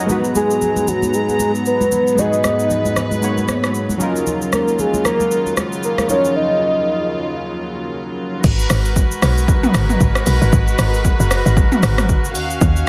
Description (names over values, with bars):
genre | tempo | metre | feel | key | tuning
amapiano | 115 BPM | 4/4 | swing 58% on 16ths | G# dorian | A4 = 440 Hz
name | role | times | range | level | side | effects
warm analog keys | accompaniment | 0.0-8.5 s | E#3 to G#5 | -24 LUFS | equal | chorus
warm studio string section | sustained chords | 0.0-12.9 s | D#2 to A#5 | -25 LUFS | equal | sidechain pumping
deep house drum kit | drums | 0.1-12.9 s | crash cymbal, hi-hat, kick drum, rim click, shaker, toms | -21 LUFS | equal | none
congas | percussion | 0.1-6.2 s | none | -28 LUFS | equal | none
soft octave-layered synth lead | melody | 0.4-7.4 s | F#4 to D#5 | -20 LUFS | equal | chorus, tremolo, digital delay
woody log drum bass | bass | 8.4-12.8 s | F#1 to D#2 | -19 LUFS | equal | none
room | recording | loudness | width
digital ambience | none | -17 LUFS | mono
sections
0.0-8.4 A section; 8.4-12.9 B section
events
break 6.4-8.4; drop 8.4-12.9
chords
0.1 G#m9; 4.0 D#m9; 8.4 G#m9; 12.4 D#m9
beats
| 0.09 0.61 1.14 1.66 | 2.18 2.70 3.22 3.75 | 4.27 4.79 5.31 5.83 | 6.35 6.88 7.40 7.92 | 8.44 8.96 9.48 10.01 | 10.53 11.05 11.57 12.09 | 12.62